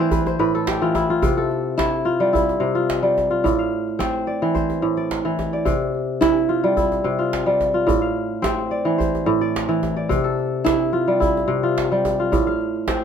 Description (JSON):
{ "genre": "west african traditional, West African string and xylophone music", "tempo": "108 BPM", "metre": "4/4", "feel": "swing 54% on 16ths", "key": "C major", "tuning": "A4 = 439 Hz", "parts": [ { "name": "kora", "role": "arpeggios", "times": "0.0-13.0 s", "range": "A2 to G5", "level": "-18 LUFS", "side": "equal", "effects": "none" }, { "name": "djembe", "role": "percussion", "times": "0.1-13.0 s", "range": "none", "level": "-26 LUFS", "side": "right 2 dB", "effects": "none" } ], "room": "moderate studio reverb, RT60 0.6 s", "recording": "minimal, uncompressed stereo recording", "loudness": "-18 LUFS", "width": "side -7 dB against mid", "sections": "0.0-13.0 A section", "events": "kora fill 0.0-1.2", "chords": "0.0 Am; 1.2 C; 3.4 Am; 5.7 C; 7.9 Am; 10.1 C; 12.3 Am" }